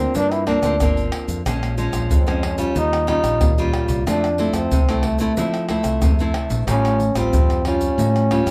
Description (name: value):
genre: samba and choro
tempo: 92 BPM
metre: 4/4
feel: straight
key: unclear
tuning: A4 = 438 Hz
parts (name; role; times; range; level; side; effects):
- breathy trombone; melody; 0.0-8.5 s; A3 to E4; -24 LUFS; equal; none
- nylon-string guitar; accompaniment; 0.0-8.5 s; F2 to F4; -25 LUFS; equal; none
- fingered electric bass; bass; 0.0-8.5 s; G1 to F3; -26 LUFS; equal; none
- egg shaker, surdo, pandeiro and tamborim; percussion; 0.1-8.5 s; none; -24 LUFS; equal; none
room: moderate small room reverb, RT60 0.6 s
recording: band playing live in one room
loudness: -19 LUFS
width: mono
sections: 0.0-8.5 A section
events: none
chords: 0.0 Gm7; 1.5 Bbm7; 2.8 Eb9; 4.1 Fmaj7; 6.7 A7alt